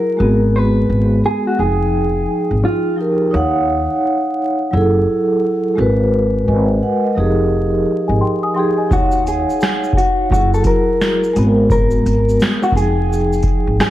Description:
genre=lo-fi hip hop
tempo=86 BPM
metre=4/4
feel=swing 63% on 16ths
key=unclear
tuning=A4 = 441 Hz
part: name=mellow electric guitar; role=melody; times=0.0-3.0, 8.9-13.9 s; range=F4 to Cb5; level=-19 LUFS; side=equal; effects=low-pass filter
part: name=vibraphone with soft mallets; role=accompaniment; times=0.0-13.9 s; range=F3 to Ab5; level=-16 LUFS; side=equal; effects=low-pass filter
part: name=upright bass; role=bass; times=0.2-13.8 s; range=F1 to Eb2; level=-18 LUFS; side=equal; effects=none
part: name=small celesta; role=second line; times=8.1-9.1 s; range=Eb5 to Eb6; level=-23 LUFS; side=left 3 dB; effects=low-pass filter, tape echo
part: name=booming analog drum machine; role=drums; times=8.9-13.9 s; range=hi-hat, kick drum, shaker, snare drum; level=-18 LUFS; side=equal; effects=none
room=light reverb, studio reverb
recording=vinyl crackle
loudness=-13 LUFS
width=side -13 dB against mid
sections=0.0-13.9 A section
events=none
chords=0.2 Abm7; 1.6 Fm9; 3.3 Ebm9; 4.7 Gbm9; 5.8 Abm9; 7.2 Fm9; 8.9 Ebm9; 10.3 Gbsus2; 11.3 Abm9; 12.7 Fm9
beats=| 0.54 1.23 1.93 2.63 | 3.33 4.02 4.72 5.42 | 6.12 6.81 7.51 8.21 | 8.91 9.60 10.30 11.00 | 11.70 12.39 13.09 13.79

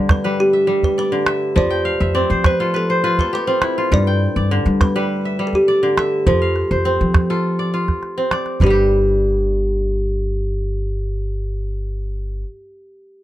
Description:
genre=west african traditional, West African string and xylophone music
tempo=102 BPM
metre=4/4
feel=straight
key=G mixolydian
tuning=A4 = 439 Hz
part: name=kalimba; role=melody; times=0.0-12.4 s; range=G4 to D5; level=-20 LUFS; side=equal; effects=none
part: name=kora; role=arpeggios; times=0.0-12.5 s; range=G2 to A5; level=-21 LUFS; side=left 1 dB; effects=none
part: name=upright bass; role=bass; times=0.0-12.4 s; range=G1 to G3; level=-20 LUFS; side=equal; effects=none
part: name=calabash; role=percussion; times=0.1-8.9 s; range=none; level=-16 LUFS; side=right 2 dB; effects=none
room=little or no reverb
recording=close, detailed microphones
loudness=-16 LUFS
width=side -14 dB against mid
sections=0.0-8.6 A section; 8.6-11.0 B section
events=kora fill 1.6-3.9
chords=0.0 G; 1.6 F5; 3.9 G; 6.3 F; 8.6 G5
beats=0.39 0.98 | 1.57 2.16 2.75 3.33 | 3.92 4.51 5.10 5.68 | 6.27 6.86 7.45 8.03 | 8.62 9.21 9.79 10.38

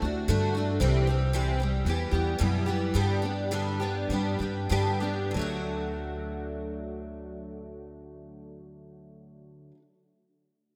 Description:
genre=acoustic folk duo or small band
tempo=92-116 BPM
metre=4/4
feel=straight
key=D mixolydian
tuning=A4 = 440 Hz
part: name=picked steel-string acoustic guitar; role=accompaniment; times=0.0-9.8 s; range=E2 to G4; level=-33 LUFS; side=equal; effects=analog chorus
part: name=upright bass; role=bass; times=0.0-9.7 s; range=C2 to G2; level=-31 LUFS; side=equal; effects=none
room=moderate lush hall reverb, RT60 2.6 s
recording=dreamy mix soaked in reverb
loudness=-28 LUFS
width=mono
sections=0.0-5.3 A section; 5.3-10.6 B section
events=slowing down 0.8-5.3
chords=0.0 D; 0.8 C; 1.9 Em; 2.9 G; 5.3 D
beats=0.29 | 0.81 1.33 1.86 2.40 | 2.94 3.51 4.10 4.71 | 5.34 6.00 6.65 7.30 | 7.95 8.61 9.26

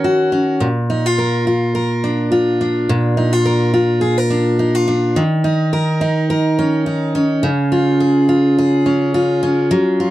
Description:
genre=pop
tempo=105 BPM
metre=4/4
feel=swing 55% on 16ths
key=unclear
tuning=A4 = 445 Hz
part: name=picked steel-string acoustic guitar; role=solo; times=0.0-10.1 s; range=A#2 to A#4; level=-14 LUFS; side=equal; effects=none
room=light reverb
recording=dry, close 1970s-style studio recording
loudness=-14 LUFS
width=side -15 dB against mid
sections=0.0-9.7 A section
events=none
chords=0.0 D#m7; 0.6 A#; 5.2 D#5; 7.4 C#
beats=0.04 | 0.61 1.18 1.74 2.31 | 2.88 3.45 4.02 4.59 | 5.16 5.73 6.29 6.86 | 7.43 8.00 8.57 9.14 | 9.71

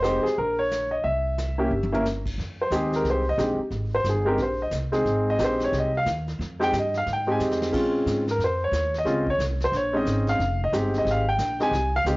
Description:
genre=jazz piano trio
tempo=180 BPM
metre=4/4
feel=swing 62% on 8ths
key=F minor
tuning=A4 = 440 Hz
part: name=clear grand piano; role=melody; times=0.0-12.2 s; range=Ab3 to Ab5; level=-23 LUFS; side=equal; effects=cassette tape
part: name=upright bass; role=bass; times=0.0-12.2 s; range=F1 to Bb2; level=-28 LUFS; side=equal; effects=none
part: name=vintage brush drum kit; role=drums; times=0.0-12.2 s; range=brushed snare drum, crash cymbal, hi-hat, kick drum, snare drum, toms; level=-37 LUFS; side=equal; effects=none
room=light reverb, small room ambience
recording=home recording on cassette, nothing above 7.5 kHz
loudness=-22 LUFS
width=side -23 dB against mid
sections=0.0-2.4 A section; 2.4-12.2 B section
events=drum fill 1.7-2.0, 7.4-7.7; grand piano solo 2.4-12.2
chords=0.4 Bbm; 1.0 C7; 2.4 Fm9; 7.7 Bbm9; 10.4 Fm9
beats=0.04 0.37 0.71 | 1.04 1.38 1.71 2.04 | 2.38 2.71 3.05 3.38 | 3.72 4.05 4.39 4.72 | 5.06 5.39 5.72 6.06 | 6.39 6.73 7.06 7.39 | 7.73 8.06 8.39 8.73 | 9.06 9.39 9.73 10.06 | 10.39 10.73 11.06 11.39 | 11.73 12.06

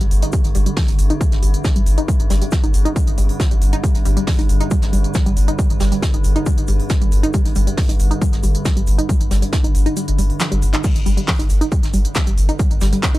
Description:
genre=driving peak-time techno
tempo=137 BPM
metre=4/4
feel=straight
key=unclear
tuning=A4 = 440 Hz
part: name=wide unison pluck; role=riff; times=0.0-13.2 s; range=F3 to Eb4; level=-24 LUFS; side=equal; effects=sidechain pumping, tape echo
part: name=saturated sub bass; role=bass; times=0.0-13.2 s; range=G1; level=-18 LUFS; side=equal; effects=overdrive, sidechain pumping, low-pass filter
part: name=metallic inharmonic drone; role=drone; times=0.0-13.2 s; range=G2 to D3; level=-27 LUFS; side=right 2 dB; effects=chorus, built-in reverb, sidechain pumping
part: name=techno drum kit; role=drums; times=0.0-13.2 s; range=crash cymbal, handclaps, hi-hat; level=-28 LUFS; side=equal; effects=sidechain pumping on hats, sidechain pumping on cymbals
part: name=vintage brush drum kit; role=drums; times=0.1-13.1 s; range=hi-hat, shaker, snare drum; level=-30 LUFS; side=equal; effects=high-pass filter on hats, high-pass filter on snare, high-pass filter on perc, high-pass filter on room
part: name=electronic kick drum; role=drums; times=0.3-13.1 s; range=none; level=-17 LUFS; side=equal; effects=none
room=studio ambience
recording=dry, gritty hardware recording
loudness=-14 LUFS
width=side -17 dB against mid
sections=0.0-13.2 A section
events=kick drops out 10.0-10.8; drum fill 10.4-10.8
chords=0.0 G5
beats=| 0.33 0.77 1.21 1.65 | 2.08 2.52 2.96 3.40 | 3.84 4.27 4.71 5.15 | 5.59 6.03 6.46 6.90 | 7.34 7.78 8.22 8.65 | 9.09 9.53 9.97 10.40 | 10.84 11.28 11.72 12.16 | 12.60 13.03

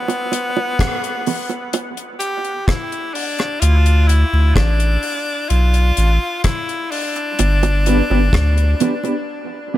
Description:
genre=dub reggae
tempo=64 BPM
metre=4/4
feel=straight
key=D dorian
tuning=A4 = 441 Hz
part: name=edgy tenor saxophone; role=melody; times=0.0-9.8 s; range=B3 to G4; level=-22 LUFS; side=left 1 dB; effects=dub echo
part: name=deep reggae drum kit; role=drums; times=0.1-9.3 s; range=hi-hat, kick drum, rim click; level=-20 LUFS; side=left 1 dB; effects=none
part: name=bongos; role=percussion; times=0.1-9.3 s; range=none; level=-25 LUFS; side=right 6 dB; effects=high-pass filter on perc, dub echo
part: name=soft dub sub bass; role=bass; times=3.6-8.7 s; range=G1 to D2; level=-13 LUFS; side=equal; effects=none
part: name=mellow electric guitar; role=accompaniment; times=4.1-9.8 s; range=A3 to B4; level=-22 LUFS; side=right 1 dB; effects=wide subtle chorus, high-pass filter, dub echo
room=studio ambience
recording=echo-heavy mix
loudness=-15 LUFS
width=side -14 dB against mid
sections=0.0-9.8 A section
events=break 0.0-3.6, 9.3-9.8; filter sweep 0.0-7.4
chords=0.0 N.C.; 3.6 Dm; 7.4 G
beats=0.79 1.73 2.68 | 3.62 4.56 5.50 6.45 | 7.39 8.33 9.27

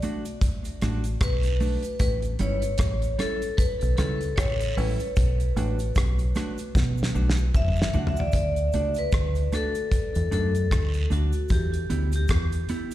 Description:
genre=roots reggae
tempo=76 BPM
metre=4/4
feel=swing 57% on 16ths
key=D major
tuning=A4 = 440 Hz
part: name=mellow electric guitar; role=accompaniment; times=0.0-12.9 s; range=G3 to G4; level=-34 LUFS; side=right 3 dB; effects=tape echo, plate reverb, slapback echo
part: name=damped 70s drum kit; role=drums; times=0.0-12.9 s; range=hi-hat, kick drum, rim click, snare drum, toms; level=-26 LUFS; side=equal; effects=none
part: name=cabasa and guiro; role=percussion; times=0.0-12.9 s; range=none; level=-44 LUFS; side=right 6 dB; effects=none
part: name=deep dub fingered electric bass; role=bass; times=0.8-12.6 s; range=F#1 to B2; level=-24 LUFS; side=equal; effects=none
part: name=vibraphone with hard mallets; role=melody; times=1.2-12.9 s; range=F#4 to F#5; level=-30 LUFS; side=left 1 dB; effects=tape echo, plate reverb, slapback echo
room=little or no reverb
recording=live gig heard through the venue's PA, recital hall reverb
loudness=-22 LUFS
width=side -14 dB against mid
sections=0.0-8.3 A section; 8.3-12.9 B section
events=drum fill 6.7-8.3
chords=0.0 Bm7; 2.0 A7; 5.2 Bm7; 8.3 D; 11.5 Em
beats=0.42 1.21 | 2.00 2.79 3.58 4.38 | 5.17 5.96 6.75 7.54 | 8.33 9.12 9.91 10.71 | 11.50 12.29

